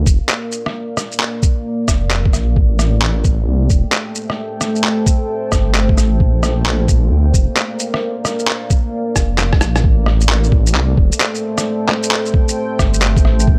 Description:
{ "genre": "future garage", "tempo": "132 BPM", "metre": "4/4", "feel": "swing 64% on 16ths", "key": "A phrygian", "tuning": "A4 = 438 Hz", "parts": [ { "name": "deep dark ambient pad", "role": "sustained chords", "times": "0.3-13.6 s", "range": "A3 to G5", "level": "-24 LUFS", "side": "equal", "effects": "chorus, built-in reverb, sidechain pumping" }, { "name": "swelling detuned saw bass", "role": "bass", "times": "0.0-13.6 s", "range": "E1 to D2", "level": "-17 LUFS", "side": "equal", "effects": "sidechain pumping" }, { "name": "electronic kick drum", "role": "drums", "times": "0.1-13.6 s", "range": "none", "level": "-16 LUFS", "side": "equal", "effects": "studio ambience" }, { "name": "electronic shaker, handclaps and rim click", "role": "drums", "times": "0.1-13.5 s", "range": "none", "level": "-21 LUFS", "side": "equal", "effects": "studio ambience" } ], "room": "light reverb", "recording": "none", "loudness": "-16 LUFS", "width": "mono", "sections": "0.0-9.8 A section; 9.8-13.6 B section", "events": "drum fill 9.2-9.8", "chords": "0.0 Bb; 2.6 Am7; 6.2 Bb; 9.8 Am7", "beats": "0.29 | 0.75 1.20 1.66 2.11 | 2.57 3.02 3.48 3.93 | 4.38 4.84 5.29 5.75 | 6.20 6.66 7.11 7.57 | 8.02 8.47 8.93 9.38 | 9.84 10.29 10.75 11.20 | 11.66 12.11 12.57 13.02 | 13.47" }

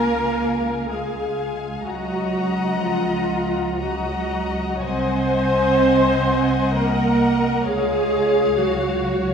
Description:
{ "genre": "classical, slow romantic movement for string orchestra", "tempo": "55-65 BPM", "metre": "3/4", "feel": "rubato", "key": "Db major", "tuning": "A4 = 444 Hz", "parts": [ { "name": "rich studio violin section", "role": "melody", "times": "0.0-9.3 s", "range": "F5 to Bb5", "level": "-31 LUFS", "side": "left 5 dB", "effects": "none" }, { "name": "rich studio violin section", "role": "second line", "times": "0.0-9.3 s", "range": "Db5 to Gb5", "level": "-28 LUFS", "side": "left 4 dB", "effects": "none" }, { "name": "rich studio viola section", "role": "accompaniment", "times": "0.0-9.3 s", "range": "F4 to Db5", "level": "-22 LUFS", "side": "equal", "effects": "none" }, { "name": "dark studio double bass section", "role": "bass", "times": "0.0-9.3 s", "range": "C2 to Db2", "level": "-26 LUFS", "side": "equal", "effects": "none" }, { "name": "warm studio cello section", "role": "bass", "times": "0.0-9.3 s", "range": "F3 to C4", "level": "-24 LUFS", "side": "right 4 dB", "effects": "none" } ], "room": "wet scoring stage reverb, RT60 1.5 s", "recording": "heard from further back in the room", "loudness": "-18 LUFS", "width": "side -6 dB against mid", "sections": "0.0-9.3 A section", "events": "none", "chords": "0.0 Db; 1.9 Ebm7/Db; 4.8 Ab7/C; 7.7 Db", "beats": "0.90 | 1.86 2.80 3.78 | 4.84 5.82 6.75 | 7.67 8.61" }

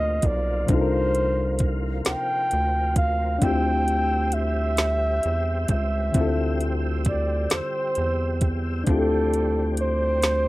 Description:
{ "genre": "slow six-eight R&B", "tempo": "44 BPM (dotted quarters)", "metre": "6/8", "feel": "straight", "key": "unclear", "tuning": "A4 = 440 Hz", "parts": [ { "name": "breathy flugelhorn", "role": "melody", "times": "0.0-10.5 s", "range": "A4 to G5", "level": "-25 LUFS", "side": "equal", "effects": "none" }, { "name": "bright reed electric piano", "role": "accompaniment", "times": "0.0-10.5 s", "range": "Bb2 to Bb4", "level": "-29 LUFS", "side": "left 4 dB", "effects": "overdrive" }, { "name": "tonewheel organ", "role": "sustained chords", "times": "0.0-10.5 s", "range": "F3 to E5", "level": "-34 LUFS", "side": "right 1 dB", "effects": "chorus vibrato, slow rotary speaker" }, { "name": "rubbery square bass", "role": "bass", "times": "0.0-10.5 s", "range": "B1 to E2", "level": "-25 LUFS", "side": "equal", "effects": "none" }, { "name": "smooth R&B drum kit", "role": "drums", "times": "0.2-10.4 s", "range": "hi-hat, kick drum, snare drum", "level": "-23 LUFS", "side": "equal", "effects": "none" } ], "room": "little or no reverb", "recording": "rough home demo mix", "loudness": "-21 LUFS", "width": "side -18 dB against mid", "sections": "0.0-10.5 A section", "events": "none", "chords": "0.0 Cm11; 3.4 Dm11", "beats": "| 0.69 2.06 | 3.42 4.78 | 6.15 7.51 | 8.87 10.24" }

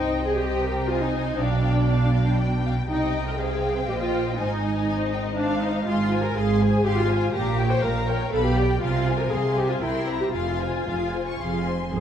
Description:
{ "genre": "quick classical-period movement for string orchestra", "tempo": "121 BPM", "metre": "3/4", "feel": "rubato", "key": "C minor, F minor from 5.9 s", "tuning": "A4 = 439 Hz", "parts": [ { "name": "rich symphonic violin section", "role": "melody", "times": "0.0-11.9 s", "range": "F5 to Db6", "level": "-34 LUFS", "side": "left 6 dB", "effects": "none" }, { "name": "warm symphonic violin section", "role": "second line", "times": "0.0-11.9 s", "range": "Ab4 to Ab5", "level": "-30 LUFS", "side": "left 4 dB", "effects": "none" }, { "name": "rich symphonic viola section", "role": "accompaniment", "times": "0.0-12.0 s", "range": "D4 to C5", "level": "-26 LUFS", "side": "equal", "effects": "none" }, { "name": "clear symphonic cello section", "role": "bass", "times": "0.0-12.0 s", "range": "F2 to C3", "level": "-27 LUFS", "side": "right 2 dB", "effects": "none" }, { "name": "rich studio double bass section", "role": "bass", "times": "0.0-12.0 s", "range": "F1 to C2", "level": "-27 LUFS", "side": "right 2 dB", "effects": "none" } ], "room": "wet scoring stage reverb, RT60 1.6 s", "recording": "dark, warm production", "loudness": "-21 LUFS", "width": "side -9 dB against mid", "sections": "0.0-11.9 A section", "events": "none", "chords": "0.0 Cm; 1.4 G7/B; 2.9 Cm; 4.4 Ab6; 5.9 Fm/Ab; 7.3 Gm7b5/Bb; 8.3 G7/B; 8.8 Fm/C; 9.8 C7; 10.3 Fm", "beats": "0.39 0.89 | 1.40 1.90 2.40 | 2.90 3.40 3.89 | 4.38 4.88 5.38 | 5.87 6.36 6.85 | 7.34 7.83 8.32 | 8.82 9.32 9.82 | 10.34 10.87 11.40 | 11.93" }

